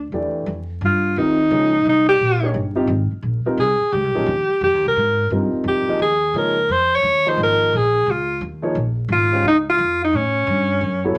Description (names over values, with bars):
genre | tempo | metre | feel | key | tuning
modal jazz | 174 BPM | 4/4 | swing 65% on 8ths | F minor | A4 = 439 Hz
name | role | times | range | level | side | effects
bright alto saxophone | melody | 0.0-11.2 s | C#4 to Db5 | -19 LUFS | equal | none
upright bass | bass | 0.0-11.2 s | G1 to A2 | -26 LUFS | equal | none
dark baby grand piano | accompaniment | 0.1-11.2 s | E3 to F5 | -25 LUFS | equal | none
room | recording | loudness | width
wet studio reverb, RT60 0.5 s | vinyl crackle | -19 LUFS | mono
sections
0.5-11.2 A section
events
none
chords
0.5 F9sus4; 6.0 Eb9sus4; 10.1 A13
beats
0.13 | 0.47 0.82 1.17 1.51 | 1.85 2.20 2.54 2.89 | 3.23 3.58 3.92 4.27 | 4.61 4.96 5.30 5.65 | 5.99 6.34 6.68 7.03 | 7.37 7.72 8.06 8.40 | 8.75 9.09 9.44 9.78 | 10.13 10.47 10.81 11.16